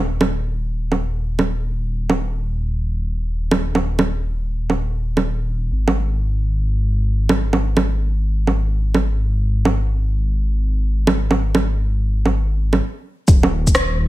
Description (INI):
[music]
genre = future garage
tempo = 127 BPM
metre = 4/4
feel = swing 66% on 16ths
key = unclear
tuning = A4 = 436 Hz
[part]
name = dark detuned saw bass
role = bass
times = 0.0-14.1 s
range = Eb1 to Ab1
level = -19 LUFS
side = equal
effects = sidechain pumping
[part]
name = electronic bongos, shaker and rim click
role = drums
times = 0.2-13.9 s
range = none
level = -18 LUFS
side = right 2 dB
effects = studio reverb
[part]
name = electronic kick drum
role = drums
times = 13.3-13.7 s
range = none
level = -13 LUFS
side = equal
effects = studio reverb
[sound]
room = little or no reverb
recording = none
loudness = -17 LUFS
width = side -16 dB against mid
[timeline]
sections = 0.0-13.3 A section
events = stop 12.8-13.3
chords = none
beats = | 0.05 0.52 1.00 1.47 | 1.94 2.41 2.89 3.36 | 3.83 4.30 4.78 5.25 | 5.72 6.19 6.67 7.14 | 7.61 8.08 8.56 9.03 | 9.50 9.97 10.45 10.92 | 11.39 11.86 12.34 12.81 | 13.28 13.75